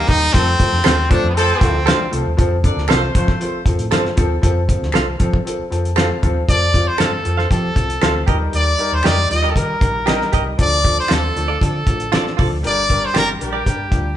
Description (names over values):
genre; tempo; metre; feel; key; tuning
uptempo 1960s-style soul; 117 BPM; 4/4; straight; F mixolydian; A4 = 440 Hz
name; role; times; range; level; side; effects
brilliant trumpet; melody; 0.0-2.1, 6.5-14.2 s; B3 to Eb5; -19 LUFS; equal; none
hollow-body short-scale fingered electric bass; bass; 0.0-14.2 s; G1 to F3; -21 LUFS; equal; none
clear upright piano; accompaniment; 0.1-14.1 s; Eb3 to A5; -24 LUFS; left 2 dB; none
cloth-damped thuddy drum kit; drums; 0.1-14.0 s; hi-hat, kick drum, snare drum; -18 LUFS; equal; none
warm horn section; second line; 0.4-3.6 s; F3 to D5; -23 LUFS; equal; none
direct-recorded clean electric guitar; stabs; 0.8-13.6 s; F4 to F5; -23 LUFS; right 5 dB; none
finger snap; percussion; 0.8-13.3 s; none; -31 LUFS; left 3 dB; none
room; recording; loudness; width
moderate large studio reverb, RT60 1.4 s; band playing live in one room, nothing above 10.9 kHz; -14 LUFS; side -11 dB against mid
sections
0.0-2.4 A section; 2.4-6.5 B section; 6.5-14.2 C section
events
band accent 0.3-2.4; upright piano fill 5.5-6.5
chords
0.3 F; 8.3 Eb; 10.6 Dm; 12.6 Gm